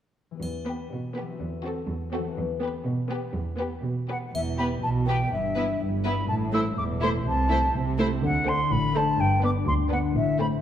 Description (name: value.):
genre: cinematic, playful, whimsical film cue.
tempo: 124 BPM.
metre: 2/4.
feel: straight.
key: E minor.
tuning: A4 = 439 Hz.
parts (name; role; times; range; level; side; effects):
concert harp; arpeggios; 0.3-10.6 s; G2 to C5; -31 LUFS; left 7 dB; none.
dark studio cello section; bass; 0.4-10.5 s; D2 to D3; -30 LUFS; right 2 dB; none.
triangle; percussion; 0.4-1.4, 4.3-5.3 s; none; -46 LUFS; equal; none.
rich studio violin section; melody; 0.7-10.6 s; A4 to C5; -38 LUFS; left 3 dB; none.
warm studio violin section; second line; 0.7-10.6 s; C4 to G4; -37 LUFS; left 1 dB; none.
warm studio viola section; accompaniment; 0.7-10.6 s; A3 to C4; -32 LUFS; right 2 dB; none.
silver concert flute; second line; 4.1-10.5 s; E5 to E6; -27 LUFS; equal; none.
warm studio double bass section; bass; 4.3-10.6 s; E1 to D2; -29 LUFS; right 2 dB; none.
room: moderate scoring stage reverb, RT60 1.8 s.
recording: dark, warm production.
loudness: -24 LUFS.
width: side -10 dB against mid.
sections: 0.4-4.3 A section; 4.3-10.6 B section.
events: none.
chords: 0.4 Em; 1.4 F#m7b5/E; 2.4 Em; 5.3 Em/G; 6.3 Am; 7.3 Am/C; 8.2 D5; 9.2 G.